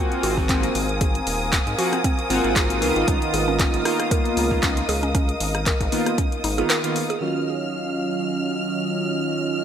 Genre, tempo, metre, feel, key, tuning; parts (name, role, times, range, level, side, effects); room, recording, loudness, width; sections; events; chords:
deep house; 116 BPM; 4/4; swing 55% on 16ths; Eb minor; A4 = 440 Hz
warm analog pad; sustained chords; 0.0-9.6 s; Gb3 to Ab5; -29 LUFS; left 1 dB; chorus, sidechain pumping
mallet-like synth pluck; arpeggios; 0.0-7.2 s; C4 to Bb4; -30 LUFS; right 1 dB; chorus, sidechain pumping, digital delay
chorused polysynth; stabs; 0.0-9.6 s; Eb3 to Gb4; -24 LUFS; right 1 dB; vintage 12-bit sampler grit, sidechain pumping, digital delay
rich symphonic violin section; texture; 0.0-9.6 s; Eb6 to F6; -30 LUFS; equal; sidechain pumping
deep house drum kit; drums; 0.1-7.3 s; crash cymbal, handclaps, hi-hat, rim click; -26 LUFS; left 1 dB; low-pass filter on hats, low-pass filter on snare, low-pass filter on cymbals, low-pass filter on room
rubbery square bass; bass; 0.2-6.6 s; Eb1 to Ab2; -27 LUFS; equal; sidechain pumping
electronic kick drum; drums; 0.4-6.3 s; -23 LUFS; equal
moderate lush hall reverb, RT60 1.8 s, digital ambience; -19 LUFS; side -8 dB against mid
0.0-7.2 A section; 7.2-9.6 B section
0.0 Ab13; 2.8 Db13; 7.2 Ebm9